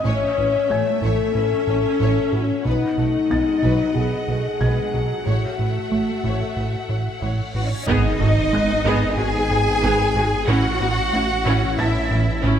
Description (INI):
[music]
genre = cinematic, hybrid orchestral and electronic film score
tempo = 92 BPM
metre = 4/4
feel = straight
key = G# phrygian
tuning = A4 = 442 Hz
[part]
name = rich symphonic violin section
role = melody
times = 0.0-12.4 s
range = C#5 to G#5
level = -31 LUFS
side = left 4 dB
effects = none
[part]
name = clear symphonic viola section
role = accompaniment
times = 0.0-12.6 s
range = F#3 to A4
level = -27 LUFS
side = right 2 dB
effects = none
[part]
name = mellow French horn section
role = sustained chords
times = 0.0-12.6 s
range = E3 to C#5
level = -24 LUFS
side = left 6 dB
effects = none
[part]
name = rubbery square bass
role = riff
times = 0.0-12.6 s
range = G#2 to B3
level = -24 LUFS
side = right 2 dB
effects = none
[part]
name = rich symphonic cello section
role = bass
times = 0.0-12.4 s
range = A2 to G#4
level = -26 LUFS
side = right 2 dB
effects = none
[part]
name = felt-muted upright piano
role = texture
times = 0.0-12.6 s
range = F#5 to A6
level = -35 LUFS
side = left 1 dB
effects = tape echo
[part]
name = warm symphonic violin section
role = second line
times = 0.1-12.4 s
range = A4 to G#5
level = -28 LUFS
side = left 2 dB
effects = none
[part]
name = rich symphonic double bass section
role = bass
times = 0.1-12.5 s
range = G#1 to B1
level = -27 LUFS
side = right 3 dB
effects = none
[part]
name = reverse cymbal and impact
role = sound effects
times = 7.5-10.5 s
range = none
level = -30 LUFS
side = equal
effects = none
[part]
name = wide detuned saw bass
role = bass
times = 7.9-12.6 s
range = G#1 to A1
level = -27 LUFS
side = equal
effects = chorus
[sound]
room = moderate scoring stage reverb, RT60 2.0 s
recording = none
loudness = -18 LUFS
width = side -9 dB against mid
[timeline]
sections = 0.0-7.9 A section; 7.9-12.6 B section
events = reverse cymbal 7.5-7.9; impact 7.9-10.5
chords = 0.0 A; 2.7 B; 5.3 F#m7/A; 7.9 G#m; 10.5 A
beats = | 0.05 0.70 1.35 2.00 | 2.66 3.31 3.96 4.61 | 5.26 5.92 6.57 7.22 | 7.87 8.53 9.18 9.83 | 10.48 11.13 11.79 12.44